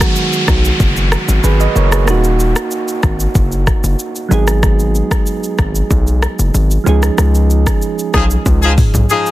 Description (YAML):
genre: afrobeats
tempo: 94 BPM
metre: 4/4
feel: straight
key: G# dorian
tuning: A4 = 439 Hz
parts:
  - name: soft electric-piano-like synth keys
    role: accompaniment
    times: 0.0-9.3 s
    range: D#3 to D#5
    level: -18 LUFS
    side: right 5 dB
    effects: chorus
  - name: afro-pop drum kit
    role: drums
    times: 0.0-9.3 s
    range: hi-hat, kick drum, rim click, shaker, toms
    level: -16 LUFS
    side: equal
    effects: soft clipping on snare
  - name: downlifter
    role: sound effects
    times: 0.0-4.6 s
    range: none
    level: -22 LUFS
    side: left 1 dB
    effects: none
  - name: hard-hitting 808-style bass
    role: bass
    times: 0.5-9.1 s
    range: D#1 to C#2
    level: -13 LUFS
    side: equal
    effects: none
  - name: clear horn section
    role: second line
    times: 8.1-9.3 s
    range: E#3 to G#4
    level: -16 LUFS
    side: left 4 dB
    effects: none
room: little or no reverb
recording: dense, heavily limited modern master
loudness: -11 LUFS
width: side -15 dB against mid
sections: 0.0-9.3 A section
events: band accent 7.2-9.3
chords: 0.0 G#m7; 2.1 D#m; 4.3 G#m7; 6.9 C#add9